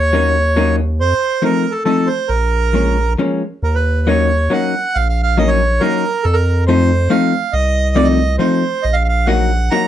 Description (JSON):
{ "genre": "musette waltz", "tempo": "138 BPM", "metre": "3/4", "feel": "rubato", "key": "Bb minor, Eb minor from 3.6 s", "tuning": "A4 = 440 Hz", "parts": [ { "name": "accordion", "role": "melody", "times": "0.0-9.9 s", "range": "A4 to Bb5", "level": "-17 LUFS", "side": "right 4 dB", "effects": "none" }, { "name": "round analog bass", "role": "bass", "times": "0.0-9.7 s", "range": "Bb1 to F2", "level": "-16 LUFS", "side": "equal", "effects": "none" }, { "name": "vintage hollow-body jazz guitar", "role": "accompaniment", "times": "0.1-9.9 s", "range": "F3 to Gb4", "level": "-16 LUFS", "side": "left 4 dB", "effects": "none" } ], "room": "moderate studio reverb, RT60 0.5 s", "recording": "nothing above 10.8 kHz", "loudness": "-13 LUFS", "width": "side -11 dB against mid", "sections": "0.0-3.6 A section; 3.6-9.9 B section", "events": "none", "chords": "0.0 Ebm7; 1.0 F7; 2.3 Bbm7; 3.6 Ebm7; 6.3 F7; 8.8 Ebm/Bb", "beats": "0.14 0.57 | 1.00 1.43 1.86 | 2.30 2.74 3.18 | 3.63 4.08 4.52 | 4.96 5.39 5.82 | 6.25 6.68 7.11 | 7.54 7.97 8.40 | 8.85 9.29 9.72" }